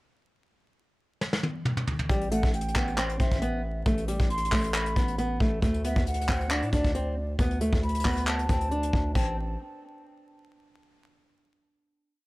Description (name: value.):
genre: hip hop, trap.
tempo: 136 BPM.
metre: 4/4.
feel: half-time.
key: A dorian.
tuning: A4 = 440 Hz.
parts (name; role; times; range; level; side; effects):
soft brush drum kit; drums; 1.2-9.3 s; crash cymbal, handclaps, hi-hat, kick drum, snare drum, toms; -27 LUFS; equal; none.
nylon-string guitar; melody; 2.1-9.4 s; G3 to D4; -31 LUFS; equal; low-pass filter.
distorted 808-style bass; bass; 2.1-9.6 s; A1 to A2; -30 LUFS; equal; distortion.
mellow concert flute; second line; 2.3-9.4 s; D5 to C6; -34 LUFS; equal; tape echo.
room: studio ambience.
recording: dry, gritty hardware recording, vinyl crackle.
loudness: -25 LUFS.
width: side -20 dB against mid.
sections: 0.3-2.1 pickup bar; 2.1-9.2 hook; 9.2-10.9 final chord.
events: drum fill 1.2-2.1.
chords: 0.3 N.C.; 2.1 Am7; 5.6 D5; 9.2 N.C..